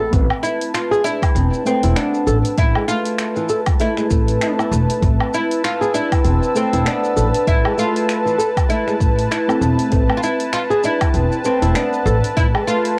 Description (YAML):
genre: organic downtempo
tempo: 98 BPM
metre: 4/4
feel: swing 58% on 16ths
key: A minor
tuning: A4 = 438 Hz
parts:
  - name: deep mellow chord stab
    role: accompaniment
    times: 0.0-13.0 s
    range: A3 to B4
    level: -29 LUFS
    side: equal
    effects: chorus, phaser, sidechain pumping, cassette tape, analog delay, plate reverb
  - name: warm analog pad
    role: sustained chords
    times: 0.0-13.0 s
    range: B4 to E6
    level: -26 LUFS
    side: equal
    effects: chorus, sidechain pumping, cassette tape
  - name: flamenco guitar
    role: arpeggios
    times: 0.0-13.0 s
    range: E3 to A4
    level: -25 LUFS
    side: equal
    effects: cassette tape, analog delay, plate reverb
  - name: upright bass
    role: bass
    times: 0.0-12.5 s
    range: E1 to A1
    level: -21 LUFS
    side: equal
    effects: sidechain pumping
  - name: deep house drum kit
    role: drums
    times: 0.1-13.0 s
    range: finger snaps, hi-hat, shaker, woodblock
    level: -28 LUFS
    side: equal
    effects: cassette tape
  - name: electronic kick drum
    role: drums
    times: 0.1-12.5 s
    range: none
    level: -20 LUFS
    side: equal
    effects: cassette tape
  - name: oud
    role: melody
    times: 0.4-13.0 s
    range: B3 to F4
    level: -25 LUFS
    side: equal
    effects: cassette tape, analog delay
room: moderate studio reverb, RT60 0.5 s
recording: home recording on cassette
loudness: -18 LUFS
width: mono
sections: 0.1-13.0 A section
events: none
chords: 0.1 Amadd9